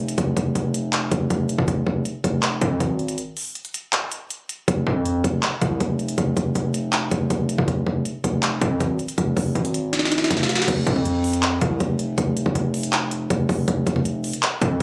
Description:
hip hop, trap; 160 BPM; 4/4; half-time; F minor; A4 = 440 Hz
distorted 808-style bass; bass; 0.0-14.8 s; F1 to F2; -24 LUFS; equal; distortion
trap drum kit; drums; 0.1-14.8 s; crash cymbal, handclaps, hi-hat, kick drum, snare drum; -26 LUFS; equal
digital ambience; recorded on a phone in the room, club reverb, compression; -23 LUFS; mono
0.0-10.7 A section; 10.7-14.8 B section
break 3.2-4.7; drum fill 9.9-10.7

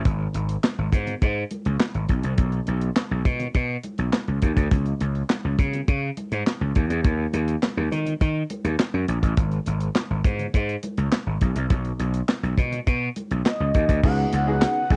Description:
early-eighties boogie funk; 103 BPM; 4/4; straight; A4 = 439 Hz
congas; percussion; 0.0-13.9 s; -39 LUFS; equal
gritty slap bass; bass; 0.1-15.0 s; G#1 to D#3; -26 LUFS; equal; overdrive
tight funk drum kit; drums; 0.1-15.0 s; crash cymbal, handclaps, hi-hat, kick drum, snare drum; -24 LUFS; equal; cassette tape
gliding portamento lead; melody; 13.5-15.0 s; D#5 to F#5; -28 LUFS; equal; chorus
clear baby grand piano; accompaniment; 14.0-15.0 s; B3 to G#4; -30 LUFS; equal; cassette tape
string machine, full ensemble; sustained chords; 14.0-15.0 s; C#3 to F#4; -37 LUFS; equal
little or no reverb; home recording on cassette, nothing above 10.8 kHz; -24 LUFS; mono
0.0-14.0 A section
0.1 N.C.; 4.7 C#5; 6.8 D#5; 9.4 N.C.; 14.0 C#9sus4

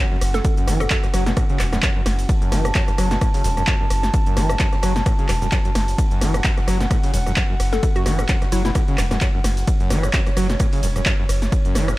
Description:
acid house; 130 BPM; 4/4; swing 56% on 16ths; F# minor pentatonic; A4 = 440 Hz
dark analog pad; sustained chords; 0.0-12.0 s; C#4 to A5; -29 LUFS; right 1 dB; chorus, sidechain pumping
overdriven acid bass; riff; 0.0-11.9 s; F#2 to F#3; -26 LUFS; equal; lush chorus, tape echo
saturated sub bass; bass; 0.2-11.9 s; E1 to F#1; -22 LUFS; equal; tube saturation, sidechain pumping
open jazz drum kit; drums; 0.2-11.9 s; ride cymbal, snare drum; -37 LUFS; left 1 dB; high-pass filter on cymbals, high-pass filter on snare, high-pass filter on room
punchy analog drum machine; drums; 0.2-12.0 s; cabasa, handclaps, hi-hat, ride cymbal, rim click, snare drum; -25 LUFS; equal; overdrive
hollow square pluck; melody; 0.3-1.0, 7.7-8.7 s; E4 to A4; -29 LUFS; left 1 dB; chorus, tape echo
electronic kick drum; drums; 0.4-11.6 s; -20 LUFS; equal; overdrive
light reverb, digital ambience; -17 LUFS; side -18 dB against mid
0.0-12.0 A section
0.0 F#5

